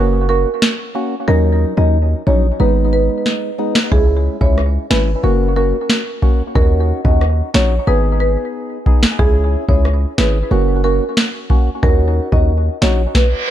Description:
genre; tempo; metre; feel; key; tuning
dancehall; 91 BPM; 4/4; straight; unclear; A4 = 442 Hz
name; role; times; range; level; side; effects
marimba with medium mallets; melody; 0.0-13.5 s; G#4 to D#5; -20 LUFS; right 2 dB; tape echo
percussive organ stab; accompaniment; 0.0-13.0 s; F#3 to G#4; -21 LUFS; left 1 dB; chorus, phaser, tape echo
hard-hitting 808-style bass; bass; 0.0-13.1 s; F#1 to D#2; -15 LUFS; equal; none
booming analog drum machine; drums; 0.6-13.3 s; kick drum, rim click, snare drum; -14 LUFS; equal; overdrive, vintage 12-bit sampler grit
reverse cymbal; sound effects; 13.3-13.5 s; none; -21 LUFS; right 3 dB; none
room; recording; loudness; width
little or no reverb; echo-heavy mix; -13 LUFS; side -11 dB against mid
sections
0.0-13.5 A section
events
break 0.0-3.9; reverse cymbal 13.3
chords
0.0 F#; 1.3 D#m7; 2.6 G#m; 3.9 C#m; 5.2 F#; 6.6 D#m7; 7.9 G#m; 9.2 C#m; 10.5 F#; 11.8 D#m7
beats
0.62 | 1.28 1.94 2.60 3.26 | 3.92 4.58 5.24 5.90 | 6.55 7.21 7.87 8.53 | 9.19 9.85 10.51 11.17 | 11.83 12.49 13.15

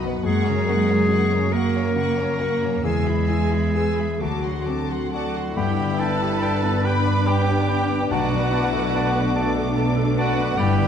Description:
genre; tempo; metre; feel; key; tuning
cinematic; 43-49 BPM (dotted quarters); 6/8; rubato; G major from 5.6 s; A4 = 442 Hz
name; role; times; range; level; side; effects
warm symphonic violin section; melody; 0.0-10.9 s; F#5 to E6; -36 LUFS; left 3 dB; none
warm symphonic violin section; second line; 0.0-10.9 s; B4 to B5; -31 LUFS; left 2 dB; none
clear grand piano; accompaniment; 0.0-10.9 s; B1 to D5; -27 LUFS; left 3 dB; none
warm symphonic viola section; accompaniment; 0.0-10.9 s; A#3 to B4; -30 LUFS; right 1 dB; none
concert harp; arpeggios; 0.0-10.9 s; F#2 to D6; -28 LUFS; left 6 dB; none
warm symphonic double bass section; bass; 0.0-10.9 s; G1 to F#2; -27 LUFS; right 4 dB; none
bright clarinet; second line; 0.2-10.7 s; F#4 to G5; -28 LUFS; left 2 dB; none
rich symphonic cello section; bass; 0.3-10.9 s; G2 to A#3; -27 LUFS; right 4 dB; none
mellow cor anglais; melody; 5.1-10.9 s; F#4 to B4; -28 LUFS; right 3 dB; none
mellow large flute ensemble; second line; 5.1-10.9 s; F#5 to B5; -32 LUFS; left 1 dB; none
warm oboe; second line; 5.6-10.8 s; A5 to B5; -34 LUFS; right 3 dB; none
mellow French horn section; sustained chords; 5.6-10.9 s; A3 to D4; -28 LUFS; left 5 dB; none
room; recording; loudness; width
wet scoring stage reverb, RT60 1.6 s; dark, warm production; -19 LUFS; side -8 dB against mid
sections
0.0-5.6 A section; 5.6-10.9 B section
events
none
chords
0.2 F#; 2.8 E; 4.2 D7; 5.6 G; 8.1 Bm7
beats
| 0.25 1.53 | 2.84 4.21 | 5.57 6.85 | 8.11 9.36 | 10.59

